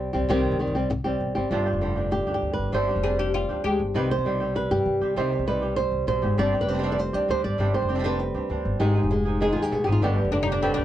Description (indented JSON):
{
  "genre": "flamenco",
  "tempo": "197 BPM",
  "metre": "4/4",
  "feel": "straight",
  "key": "G phrygian dominant",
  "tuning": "A4 = 438 Hz",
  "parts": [
    { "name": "flamenco guitar", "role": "melody", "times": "0.0-10.8 s", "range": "G2 to D5", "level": "-24 LUFS", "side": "equal", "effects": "none" },
    { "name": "upright bass", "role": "bass", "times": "0.0-10.8 s", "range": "F1 to G2", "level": "-28 LUFS", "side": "equal", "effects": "none" },
    { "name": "flamenco guitar", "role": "stabs", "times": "1.5-10.8 s", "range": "B2 to Ab4", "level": "-30 LUFS", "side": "right 2 dB", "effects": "none" },
    { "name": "oud", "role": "second line", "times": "3.0-3.9, 10.3-10.8 s", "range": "C4 to Ab4", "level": "-28 LUFS", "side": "left 5 dB", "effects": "none" }
  ],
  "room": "light reverb",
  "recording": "worn, warbling old tape, cassette tape, warbly pitch drift",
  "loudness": "-22 LUFS",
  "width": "side -12 dB against mid",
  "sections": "0.0-1.5 A section; 1.5-10.8 B section",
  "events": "none",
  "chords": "0.0 Cm; 1.5 Gsus4; 4.0 Cm; 6.4 Gsus4; 8.8 Ab; 10.0 G"
}